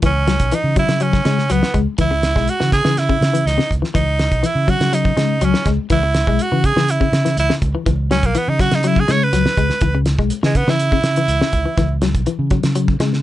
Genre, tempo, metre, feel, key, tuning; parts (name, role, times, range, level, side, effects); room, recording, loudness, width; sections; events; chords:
afrobeat; 122 BPM; 4/4; straight; C# minor; A4 = 440 Hz
electric guitar at the edge of break-up; arpeggios; 0.0-13.2 s; C#3 to G#3; -21 LUFS; left 7 dB; harmonic tremolo
fingered electric bass; bass; 0.0-13.2 s; B1 to C#3; -19 LUFS; right 1 dB
cloth-damped thuddy drum kit; drums; 0.0-13.2 s; hi-hat, kick drum, snare drum; -20 LUFS; right 1 dB
raspy tenor saxophone; melody; 0.1-11.9 s; G#3 to C#5; -19 LUFS; right 3 dB
little or no reverb; nothing above 10.8 kHz; -14 LUFS; side -14 dB against mid
0.0-13.2 A section
tenor saxophone solo 0.0-13.2
0.0 C#m